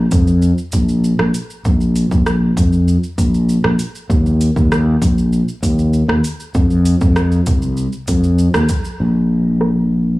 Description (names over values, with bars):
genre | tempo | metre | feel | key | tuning
sunset chillout | 98 BPM | 4/4 | straight | unclear | A4 = 442 Hz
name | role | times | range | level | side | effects
sustaining fretless electric bass | bass | 0.0-10.2 s | Bb1 to F2 | -13 LUFS | equal | transformer saturation
deep house drum kit | drums | 0.1-10.2 s | hi-hat, rim click, shaker | -24 LUFS | right 1 dB | overdrive, low-pass filter on perc, low-pass filter on snare, low-pass filter on hats
electronic kick drum | drums | 0.1-8.8 s | none | -18 LUFS | equal | overdrive
room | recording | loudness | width
little or no reverb | dry, gritty hardware recording, transformer saturation, small room ambience | -13 LUFS | side -19 dB against mid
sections
0.0-9.0 A section; 9.0-10.2 B section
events
band accent 8.5-8.8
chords
none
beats
0.43 1.04 | 1.65 2.26 2.88 3.49 | 4.10 4.71 5.32 5.94 | 6.55 7.16 7.77 8.38 | 9.00 9.61